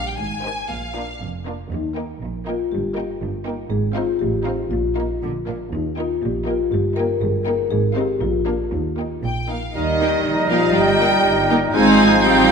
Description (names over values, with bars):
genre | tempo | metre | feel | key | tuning
cinematic | 120 BPM | 2/4 | straight | Eb major | A4 = 442 Hz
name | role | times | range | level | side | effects
warm studio violin section | melody | 0.0-12.5 s | F5 to Ab5 | -31 LUFS | left 3 dB | none
warm studio violin section | second line | 0.0-12.5 s | D4 to Ab5 | -25 LUFS | left 1 dB | none
rich studio viola section | accompaniment | 0.0-12.5 s | Eb3 to Eb4 | -25 LUFS | right 1 dB | none
rich studio cello section | bass | 0.0-12.5 s | Eb2 to Ab3 | -24 LUFS | right 3 dB | none
warm studio double bass section | bass | 0.0-12.5 s | F1 to Eb2 | -27 LUFS | right 4 dB | none
marimba with soft mallets | melody | 1.7-12.5 s | Eb4 to Bb4 | -23 LUFS | left 6 dB | none
clear clarinet | second line | 9.7-12.5 s | Eb4 | -27 LUFS | right 1 dB | none
warm oboe | second line | 9.7-12.5 s | Bb4 to C5 | -24 LUFS | right 2 dB | none
bright flute section | second line | 9.8-12.5 s | Eb5 to F5 | -24 LUFS | equal | none
mellow bassoon | accompaniment | 9.8-12.5 s | F3 to G3 | -25 LUFS | right 2 dB | none
dark French horn section | sustained chords | 9.8-12.5 s | F3 to Eb4 | -25 LUFS | left 3 dB | none
room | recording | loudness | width
wet scoring stage reverb, RT60 1.9 s | none | -17 LUFS | side -6 dB against mid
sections
0.0-1.7 A section; 1.7-9.8 B section; 9.8-12.5 B section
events
none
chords
0.2 Abmaj7; 0.7 Bb; 1.7 Eb; 2.7 Eb/G; 3.7 Fm7/Ab; 4.2 F7/A; 4.7 Bbsus4; 5.2 Bb; 5.7 Eb; 6.7 Eb/G; 7.7 Fm7/Ab; 8.2 Bb; 8.7 Eb; 10.8 Eb/G; 11.7 Fm7/Ab